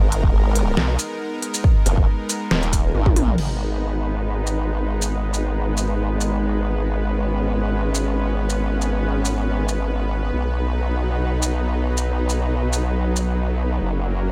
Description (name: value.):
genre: heavy wobble dubstep.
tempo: 138 BPM.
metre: 4/4.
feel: swing 53% on 16ths, half-time.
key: G# minor.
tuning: A4 = 440 Hz.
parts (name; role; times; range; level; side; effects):
supersaw pad; sustained chords; 0.0-14.3 s; F#3 to B4; -28 LUFS; equal; sidechain pumping.
formant-sweep wobble bass; bass; 0.0-14.3 s; D#1 to B1; -24 LUFS; equal; chorus, overdrive.
dubstep drum kit; drums; 0.1-13.3 s; crash cymbal, hi-hat, shaker, snare drum, toms; -26 LUFS; equal; studio ambience.
electronic kick drum; drums; 0.2-3.1 s; none; -20 LUFS; equal; studio ambience.
room: little or no reverb.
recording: none.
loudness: -21 LUFS.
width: mono.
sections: 0.0-3.4 A section; 3.4-14.3 B section.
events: drop 0.0-3.4; drum fill 2.9-3.4.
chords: 0.0 G#madd9; 3.4 G#m; 10.3 B; 13.8 F#.